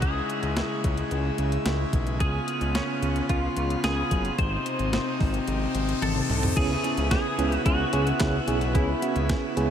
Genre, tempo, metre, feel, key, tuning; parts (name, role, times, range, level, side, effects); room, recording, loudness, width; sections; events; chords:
synth-pop; 110 BPM; 4/4; straight; C# minor; A4 = 441 Hz
clean electric guitar; melody; 0.0-9.7 s; C#4 to B#4; -30 LUFS; equal; ensemble chorus, diffuse ambient delay
pipe organ, full organ; sustained chords; 0.0-9.7 s; B#2 to E#4; -29 LUFS; equal
fat analog bass; bass; 0.0-9.7 s; F#1 to C#2; -28 LUFS; equal
clean 12-bit digital drum machine; drums; 0.0-9.7 s; crash cymbal, handclaps, hi-hat, kick drum, snare drum, toms; -29 LUFS; equal; overdrive
downlifter and riser; sound effects; 0.0-6.6 s; -40 LUFS; left 2 dB
FM electric piano with auto-pan; accompaniment; 6.6-9.7 s; B3 to G#4; -30 LUFS; right 3 dB
moderate huge ambient reverb, RT60 7.9 s; dreamy mix soaked in reverb; -23 LUFS; side -9 dB against mid
0.0-6.6 A section; 6.6-9.7 B section
riser 5.3-6.6; drum fill 6.0-6.6
0.0 C#m; 2.2 C#7; 4.4 G#; 6.6 C#m7